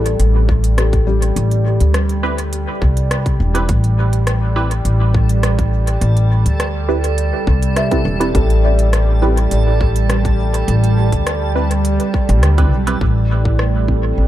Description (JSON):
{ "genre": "ambient dub", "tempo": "103 BPM", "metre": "4/4", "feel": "straight", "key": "A minor", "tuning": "A4 = 440 Hz", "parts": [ { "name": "warm analog pad", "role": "sustained chords", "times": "0.0-14.3 s", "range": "G3 to A4", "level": "-23 LUFS", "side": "right 4 dB", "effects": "wide subtle chorus" }, { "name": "felt-muted upright piano", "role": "arpeggios", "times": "0.0-13.0 s", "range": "G3 to E5", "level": "-25 LUFS", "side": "left 4 dB", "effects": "analog delay" }, { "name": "filtered dub chord stab", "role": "stabs", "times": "0.0-14.0 s", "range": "C4 to B4", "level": "-24 LUFS", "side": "right 2 dB", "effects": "phaser, dub echo" }, { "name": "upright bass", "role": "bass", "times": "0.0-14.3 s", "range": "E1 to D2", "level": "-14 LUFS", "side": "equal", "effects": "none" }, { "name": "organic electronic drum kit", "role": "drums", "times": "0.1-13.7 s", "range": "hi-hat, rim click", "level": "-26 LUFS", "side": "equal", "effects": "overdrive, dub echo" }, { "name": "electronic kick drum", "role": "drums", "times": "0.5-14.0 s", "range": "none", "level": "-18 LUFS", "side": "equal", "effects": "overdrive" }, { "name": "backwards swelling texture", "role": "texture", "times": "4.5-13.0 s", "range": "A4", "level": "-29 LUFS", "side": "right 1 dB", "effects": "built-in reverb" } ], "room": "little or no reverb", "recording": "echo-heavy mix", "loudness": "-13 LUFS", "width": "side -13 dB against mid", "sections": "0.0-13.0 A section; 13.0-14.3 B section", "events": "none", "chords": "0.0 Am7" }